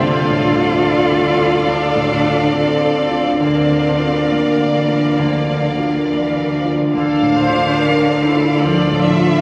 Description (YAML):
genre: cinematic, emotional film score for orchestra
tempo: 67-74 BPM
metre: 4/4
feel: rubato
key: D minor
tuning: A4 = 444 Hz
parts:
  - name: clear studio violin section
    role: melody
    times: 0.0-9.4 s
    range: D5 to F5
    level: -28 LUFS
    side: equal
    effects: none
  - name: warm cello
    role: melody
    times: 0.0-9.4 s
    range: Bb3 to F4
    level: -23 LUFS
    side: equal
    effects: none
  - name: clear studio violin section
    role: second line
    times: 0.0-9.4 s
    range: D5 to F5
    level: -24 LUFS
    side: equal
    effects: none
  - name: rich studio viola section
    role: accompaniment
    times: 0.0-9.4 s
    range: A4 to C5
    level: -26 LUFS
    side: equal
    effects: none
  - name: warm grand piano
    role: accompaniment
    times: 0.0-9.4 s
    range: D2 to D5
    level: -24 LUFS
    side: equal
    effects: none
  - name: concert harp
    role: arpeggios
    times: 0.0-9.4 s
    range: D3 to A4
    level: -20 LUFS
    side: equal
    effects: none
  - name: clear studio double bass section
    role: bass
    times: 0.0-9.4 s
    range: D2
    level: -28 LUFS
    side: equal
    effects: none
  - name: rich studio cello section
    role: bass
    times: 0.0-9.4 s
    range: D3 to F3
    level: -28 LUFS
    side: equal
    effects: none
room: wet cathedral reverb, RT60 5.5 s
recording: vinyl crackle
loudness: -16 LUFS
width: mono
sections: 0.0-9.4 A section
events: none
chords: 0.0 Dm; 3.4 Bb/D; 6.9 Dm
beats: | 0.02 0.84 1.68 2.53 | 3.40 4.29 5.18 6.08 | 6.95 7.79 8.64